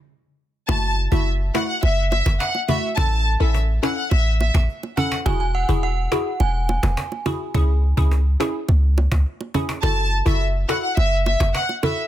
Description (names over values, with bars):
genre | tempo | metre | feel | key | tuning
dancehall | 105 BPM | 4/4 | straight | F# minor | A4 = 440 Hz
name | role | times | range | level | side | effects
warm studio violin section | melody | 0.7-5.1, 9.8-12.0 s | E5 to A5 | -24 LUFS | equal | tape echo
glassy wavetable pluck | accompaniment | 0.7-12.0 s | A3 to A4 | -26 LUFS | left 1 dB | chorus
clean 808-style bass | bass | 0.7-11.5 s | E1 to C#2 | -18 LUFS | equal | none
cajon | drums | 0.7-12.0 s | none | -27 LUFS | equal | none
bongos | percussion | 0.7-12.0 s | none | -30 LUFS | right 5 dB | none
synth chime | second line | 5.3-7.5 s | F#5 to G#5 | -27 LUFS | right 4 dB | ensemble chorus, tape echo
room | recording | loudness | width
little or no reverb | dense, heavily limited modern master | -18 LUFS | side -12 dB against mid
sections
0.7-12.1 A section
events
stop 0.0-0.7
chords
0.0 N.C.; 0.7 F#m7; 3.0 A; 5.3 Eadd9; 7.5 C#m; 9.8 F#m7